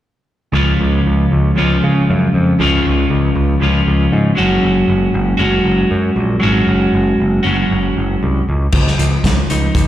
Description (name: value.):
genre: indie rock.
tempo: 117 BPM.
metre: 4/4.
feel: straight.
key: Db major.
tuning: A4 = 442 Hz.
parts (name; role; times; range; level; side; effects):
sludgy distorted guitar; riff; 0.5-9.9 s; Db3 to Gb4; -14 LUFS; equal; overdrive.
overdriven picked electric bass; bass; 0.5-9.9 s; Gb1 to Db3; -16 LUFS; equal; none.
loose indie drum kit; drums; 8.7-9.9 s; crash cymbal, hi-hat, kick drum, snare drum; -16 LUFS; equal; none.
room: small room ambience.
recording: live gig heard through the venue's PA, recital hall reverb.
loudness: -12 LUFS.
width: side -12 dB against mid.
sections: 0.5-8.7 A section; 8.7-9.9 B section.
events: none.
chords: 0.5 Db; 4.4 Gbsus2; 8.5 N.C.; 8.7 Dbadd9.